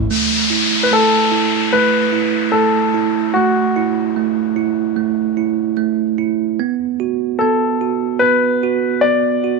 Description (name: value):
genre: pop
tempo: 74 BPM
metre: 4/4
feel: straight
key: unclear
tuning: A4 = 439 Hz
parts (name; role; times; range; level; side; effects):
- bell-like tine electric piano; accompaniment; 0.0-9.6 s; A3 to F#4; -17 LUFS; right 14 dB; medium stereo tremolo
- downlifter; sound effects; 0.1-6.6 s; none; -21 LUFS; left 3 dB; none
- clear baby grand piano; melody; 0.8-9.6 s; F#4 to D5; -16 LUFS; left 4 dB; none
room: light reverb, small room ambience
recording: 1960s-style stereo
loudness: -14 LUFS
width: side -3 dB against mid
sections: 0.1-9.6 A section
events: none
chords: 0.1 A5; 6.6 B5